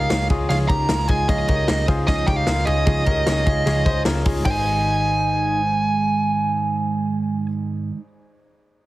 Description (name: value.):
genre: jangly indie pop.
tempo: 151 BPM.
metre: 4/4.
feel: straight.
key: Ab major.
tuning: A4 = 440 Hz.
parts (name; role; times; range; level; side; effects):
fuzz lead guitar; melody; 0.0-7.5 s; Eb5 to Bb5; -22 LUFS; right 2 dB; distortion.
bright upright piano; accompaniment; 0.0-8.9 s; Eb4 to Eb5; -32 LUFS; left 2 dB; plate reverb.
clean electric guitar; accompaniment; 0.0-8.1 s; Ab2 to C5; -26 LUFS; right 4 dB; analog chorus.
direct-recorded clean electric guitar; arpeggios; 0.0-5.6 s; Eb4 to C5; -28 LUFS; left 3 dB; plate reverb.
vintage muted picked electric bass; bass; 0.0-7.5 s; Ab1 to Db2; -23 LUFS; equal; none.
vintage drum kit; drums; 0.1-4.5 s; crash cymbal, hi-hat, kick drum, ride cymbal, snare drum; -23 LUFS; equal; none.
room: light reverb.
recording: heavily compressed radio sound.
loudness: -18 LUFS.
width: side -16 dB against mid.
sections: 0.0-4.5 A section; 4.5-7.6 B section.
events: none.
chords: 0.0 Dbadd9; 4.5 Ab.